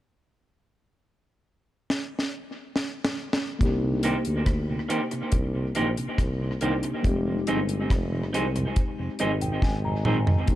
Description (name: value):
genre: lovers rock reggae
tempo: 70 BPM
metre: 4/4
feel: straight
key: C minor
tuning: A4 = 440 Hz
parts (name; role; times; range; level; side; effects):
- deep reggae drum kit; drums; 1.9-10.6 s; hi-hat, kick drum, rim click, snare drum, toms; -26 LUFS; equal; tape echo
- mellow tine electric piano; accompaniment; 3.6-10.6 s; Ab3 to Bb5; -31 LUFS; left 2 dB; analog chorus, tape echo
- breathy tuba; bass; 3.6-10.6 s; F1 to D2; -28 LUFS; equal; none
- tonewheel organ; accompaniment; 3.8-10.4 s; F2 to Eb4; -34 LUFS; right 3 dB; chorus vibrato, stopped rotary speaker, tape echo
- electric guitar through a small old amp; stabs; 4.0-10.3 s; Bb3 to C5; -30 LUFS; right 2 dB; tape echo
room: studio ambience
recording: none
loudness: -24 LUFS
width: side -14 dB against mid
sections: 0.2-3.6 A section; 3.6-10.5 B section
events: drum fill 1.9-3.6, 9.6-10.5; tine electric piano fill 8.8-10.5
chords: 0.2 N.C.; 3.6 Cm7; 7.0 Fm7